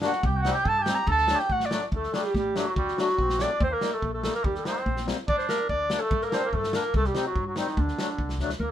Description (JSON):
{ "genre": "klezmer", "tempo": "143 BPM", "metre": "2/4", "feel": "straight", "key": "D phrygian dominant", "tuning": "A4 = 441 Hz", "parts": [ { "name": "trombone with straight mute", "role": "second line", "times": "0.0-8.7 s", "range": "D3 to A4", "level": "-32 LUFS", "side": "right 4 dB", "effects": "none" }, { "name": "accordion", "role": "accompaniment", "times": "0.0-8.5 s", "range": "F#3 to Eb4", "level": "-32 LUFS", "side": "left 5 dB", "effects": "none" }, { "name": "upright bass", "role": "bass", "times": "0.0-8.7 s", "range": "A1 to G2", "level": "-30 LUFS", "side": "equal", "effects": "none" }, { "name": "vintage drum kit", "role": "drums", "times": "0.0-8.6 s", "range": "kick drum, snare drum", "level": "-31 LUFS", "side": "equal", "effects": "none" }, { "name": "warm clarinet", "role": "melody", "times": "0.1-8.7 s", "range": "D4 to Bb5", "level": "-27 LUFS", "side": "equal", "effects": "none" } ], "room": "moderate studio reverb, RT60 0.6 s", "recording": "minimal, uncompressed stereo recording", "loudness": "-24 LUFS", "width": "side -11 dB against mid", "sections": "0.0-1.9 A section; 1.9-8.6 B section", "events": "clarinet solo 0.0-1.9; drum fill 8.4", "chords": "0.2 Cm; 1.1 D; 3.6 Eb; 5.3 Gm; 6.9 Cm; 7.8 D" }